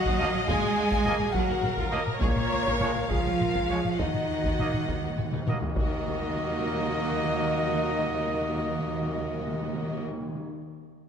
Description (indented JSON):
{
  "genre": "cinematic, epic orchestral film score",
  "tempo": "69 BPM (dotted quarters)",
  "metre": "6/8",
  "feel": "straight",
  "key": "Eb minor",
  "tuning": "A4 = 440 Hz",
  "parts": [
    { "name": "warm symphonic violin section", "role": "melody", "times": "0.0-10.0 s", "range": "Bb4 to Ab5", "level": "-38 LUFS", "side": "left 5 dB", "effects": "none" },
    { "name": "mellow hollow concert flute", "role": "second line", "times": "0.0-10.0 s", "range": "Bb4 to Ab5", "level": "-36 LUFS", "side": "equal", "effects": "none" },
    { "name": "warm symphonic violin section", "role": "second line", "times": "0.0-10.0 s", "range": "Eb4 to Gb5", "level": "-38 LUFS", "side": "left 3 dB", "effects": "none" },
    { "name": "warm symphonic viola section", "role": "accompaniment", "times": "0.0-10.0 s", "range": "Gb4 to Eb5", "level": "-35 LUFS", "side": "right 1 dB", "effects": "none" },
    { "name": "mellow French horn section", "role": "sustained chords", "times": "0.0-10.0 s", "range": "Bb3 to Ab4", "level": "-32 LUFS", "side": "left 3 dB", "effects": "none" },
    { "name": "warm symphonic cello section", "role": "bass", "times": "0.0-10.0 s", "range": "Bb2 to Ab3", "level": "-34 LUFS", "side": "right 3 dB", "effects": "none" },
    { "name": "warm symphonic double bass section", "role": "bass", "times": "0.1-10.0 s", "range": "Db2 to Eb2", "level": "-36 LUFS", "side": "right 4 dB", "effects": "none" },
    { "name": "taiko ensemble", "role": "drums", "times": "0.1-6.9 s", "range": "none", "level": "-30 LUFS", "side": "equal", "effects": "none" },
    { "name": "clear trombone section", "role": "sustained chords", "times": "0.2-10.0 s", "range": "F3 to Bb3", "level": "-38 LUFS", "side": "right 4 dB", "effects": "none" },
    { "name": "mellow trumpet", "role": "stabs", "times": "0.2-10.0 s", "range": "Db5 to Eb5", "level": "-35 LUFS", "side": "right 1 dB", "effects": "none" },
    { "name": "timpani", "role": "percussion", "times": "4.0-10.4 s", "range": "Eb3", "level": "-34 LUFS", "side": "equal", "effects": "none" }
  ],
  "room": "moderate scoring stage reverb, RT60 1.7 s",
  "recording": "none",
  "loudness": "-25 LUFS",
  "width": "side -7 dB against mid",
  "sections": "0.0-5.8 A section; 5.8-9.3 B section",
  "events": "timpani fill 4.0-5.8; drum fill 5.3-5.8",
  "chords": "0.0 Ebmadd9; 2.2 Db6; 4.0 Ebm",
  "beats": "| 0.49 1.35 | 2.22 3.11 | 4.00 4.89 | 5.78 6.65 | 7.52 8.39"
}